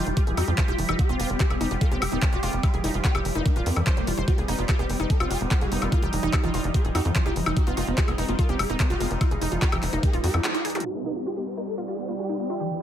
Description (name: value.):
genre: psychedelic trance.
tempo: 146 BPM.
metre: 4/4.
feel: straight.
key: F minor.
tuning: A4 = 440 Hz.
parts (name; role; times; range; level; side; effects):
swarming rave lead; melody; 0.0-12.8 s; F3 to Bb4; -31 LUFS; equal; chorus, phaser, sidechain pumping, dub echo.
formant-sweep wobble bass; second line; 0.0-10.5 s; Ab3 to Eb4; -40 LUFS; right 5 dB; none.
overtone-sweeping drone; sustained chords; 0.0-12.8 s; G3 to G4; -32 LUFS; right 1 dB; chorus, built-in reverb, sidechain pumping.
wide unison pluck; riff; 0.0-12.7 s; Eb4 to C5; -32 LUFS; moving between left 3 dB and right 3 dB; auto-pan, sidechain pumping, dub echo.
tight sequencer bass; bass; 0.1-10.4 s; Eb1 to F2; -28 LUFS; equal; none.
drum and bass drum kit; drums; 0.1-10.9 s; handclaps, hi-hat, woodblock; -30 LUFS; left 2 dB; overdrive, low-pass filter on hats, studio reverb, low-pass filter on snare, low-pass filter on perc.
electronic kick drum; drums; 0.2-10.1 s; none; -23 LUFS; equal; overdrive, studio reverb.
zap and downlifter; sound effects; 10.8-12.8 s; none; -41 LUFS; equal; none.
room: digital ambience.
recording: low-pass filter, faint mains hum.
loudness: -22 LUFS.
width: side -10 dB against mid.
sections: 0.0-10.9 A section; 10.9-12.8 B section.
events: drop 0.0-10.9; break 10.4-10.9; band accent 10.4; drum fill 10.6; filter sweep on synth arpeggio sound 10.9-12.8; filter sweep on synth drone 10.9-12.8; filter sweep 10.9-12.8.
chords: 0.0 F5.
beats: 0.17 0.58 | 0.99 1.40 1.81 2.22 | 2.63 3.04 3.46 3.87 | 4.28 4.69 5.10 5.51 | 5.92 6.33 6.74 7.16 | 7.57 7.98 8.39 8.80 | 9.21 9.62 10.03 10.44 | 10.85 11.26 11.68 12.09 | 12.50.